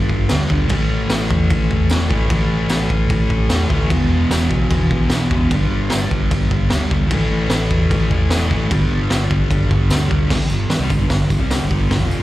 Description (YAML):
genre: garage rock duo or trio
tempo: 150 BPM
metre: 4/4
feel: straight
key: A minor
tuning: A4 = 440 Hz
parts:
  - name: thick fuzz guitar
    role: riff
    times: 0.0-12.2 s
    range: E2 to C4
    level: -20 LUFS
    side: equal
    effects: distortion
  - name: hollow-body short-scale fingered electric bass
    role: bass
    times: 0.0-12.2 s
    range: E1 to E2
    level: -20 LUFS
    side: equal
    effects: none
  - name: raw garage drum kit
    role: drums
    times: 0.1-12.0 s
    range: crash cymbal, hi-hat, kick drum, snare drum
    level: -19 LUFS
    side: equal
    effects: none
  - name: tambourine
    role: percussion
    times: 0.3-12.2 s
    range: none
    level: -34 LUFS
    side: left 2 dB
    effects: none
room: little or no reverb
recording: live gig heard through the venue's PA, club ambience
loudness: -15 LUFS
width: side -16 dB against mid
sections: 0.0-10.3 A section; 10.3-12.2 B section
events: none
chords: 0.0 G5; 0.7 A5; 3.9 E5; 5.5 G5; 7.1 A5; 8.7 G5